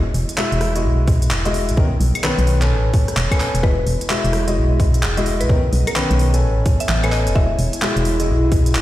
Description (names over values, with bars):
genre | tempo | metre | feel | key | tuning
UK garage, two-step garage | 129 BPM | 4/4 | swing 63% on 16ths | E major | A4 = 440 Hz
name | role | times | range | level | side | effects
organ-like FM bass | bass | 0.0-8.8 s | E1 to B1 | -18 LUFS | equal | tube saturation
airy breathy pad | texture | 0.0-8.8 s | B3 to A#5 | -29 LUFS | right 1 dB | chorus, sidechain pumping
garage drum kit | drums | 0.1-8.8 s | claves, handclaps, hi-hat, rim click | -24 LUFS | equal | none
warm baby grand piano | stabs | 0.4-8.8 s | D#3 to G#5 | -22 LUFS | left 2 dB | digital delay
electronic kick drum | drums | 1.1-8.6 s | none | -18 LUFS | equal | none
mallet-like synth pluck | melody | 3.6-7.5 s | A#4 to E5 | -27 LUFS | left 2 dB | chorus, digital delay
room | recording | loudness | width
light reverb, digital ambience | played on a big sound system in a bare room, stone room reverb | -15 LUFS | side -14 dB against mid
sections
0.0-8.8 A section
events
fade-in on analog synth pad 0.0-8.8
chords
0.0 Emaj9; 1.8 Bmaj9; 2.7 Amaj9; 3.6 Emaj9; 5.5 Bmaj9; 6.4 Amaj9; 7.4 Emaj9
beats
0.38 0.84 1.31 | 1.77 2.24 2.70 3.17 | 3.63 4.10 4.56 5.03 | 5.49 5.96 6.42 6.89 | 7.36 7.82 8.29 8.75